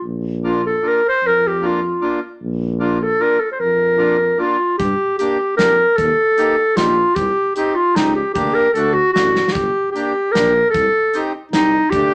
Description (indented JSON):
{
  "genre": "alpine folk, alpine dance band",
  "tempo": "151 BPM",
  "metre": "3/4",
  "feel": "straight",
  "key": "Bb major, G minor from 4.8 s",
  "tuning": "A4 = 441 Hz",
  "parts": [
    { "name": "warm clarinet", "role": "melody", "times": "0.0-12.1 s", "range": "Eb4 to C5", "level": "-18 LUFS", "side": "equal", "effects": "none" },
    { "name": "mellow tuba", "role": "bass", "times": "0.0-12.1 s", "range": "G1 to G2", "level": "-26 LUFS", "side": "equal", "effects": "none" },
    { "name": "accordion", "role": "accompaniment", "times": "0.4-12.1 s", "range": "A3 to G4", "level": "-25 LUFS", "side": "equal", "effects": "none" },
    { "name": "loose indie drum kit", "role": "drums", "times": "4.8-12.0 s", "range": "hi-hat, kick drum, snare drum", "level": "-26 LUFS", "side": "equal", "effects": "none" }
  ],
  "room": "wet studio reverb, RT60 0.6 s",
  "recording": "none",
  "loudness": "-17 LUFS",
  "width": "mono",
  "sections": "0.0-4.8 A section; 4.8-12.1 B section",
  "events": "drum fill 9.4",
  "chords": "0.0 Bb; 4.8 Gm; 6.0 Eb; 7.2 Cm; 8.4 Gm/D; 8.8 D; 9.6 Gm; 10.7 Cm"
}